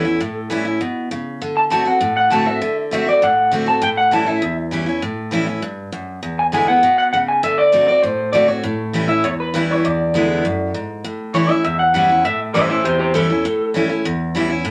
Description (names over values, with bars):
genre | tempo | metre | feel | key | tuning
rock | 199 BPM | 4/4 | straight | A mixolydian | A4 = 440 Hz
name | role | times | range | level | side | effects
electric guitar through a small old amp | melody | 0.0-14.0 s | G4 to A5 | -18 LUFS | equal | none
picked steel-string acoustic guitar | accompaniment | 0.0-14.7 s | E2 to F#4 | -22 LUFS | equal | none
room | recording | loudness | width
moderate studio reverb, RT60 0.6 s | none | -18 LUFS | mono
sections
0.0-11.0 A section; 11.0-14.7 B section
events
clean electric guitar solo 11.0-14.7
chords
0.0 A; 1.4 D7; 3.8 A7; 6.2 E7; 7.4 D7; 8.6 A7; 9.8 E7; 11.0 A7